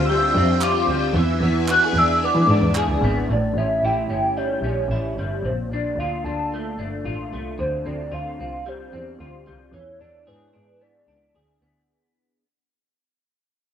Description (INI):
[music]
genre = indie pop, bedroom pop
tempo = 112 BPM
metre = 4/4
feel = straight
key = unclear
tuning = A4 = 440 Hz
[part]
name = hollow clarinet-like synth lead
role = melody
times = 0.0-11.6 s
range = B4 to F#6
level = -23 LUFS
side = equal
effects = analog chorus, slapback echo
[part]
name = electric guitar through a small old amp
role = accompaniment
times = 0.0-12.4 s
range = A2 to G#4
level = -25 LUFS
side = left 1 dB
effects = analog chorus, warbly pitch drift
[part]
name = phased string machine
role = sustained chords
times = 0.0-3.3 s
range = D4 to G#5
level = -30 LUFS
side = equal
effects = ensemble chorus, phaser
[part]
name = clear double bass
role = bass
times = 0.0-11.8 s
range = G1 to E3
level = -24 LUFS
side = equal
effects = none
[part]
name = group handclap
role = percussion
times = 0.6-2.9 s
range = none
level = -29 LUFS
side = right 6 dB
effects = none
[sound]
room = light reverb, small room ambience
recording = rough home demo mix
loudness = -19 LUFS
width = side -9 dB against mid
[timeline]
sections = 0.0-3.3 A section; 3.3-11.9 B section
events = fade-out 3.3-11.9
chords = 0.0 Dm11; 1.1 E7; 3.3 A7; 5.4 Bbmaj7; 7.6 Dm11; 9.7 E7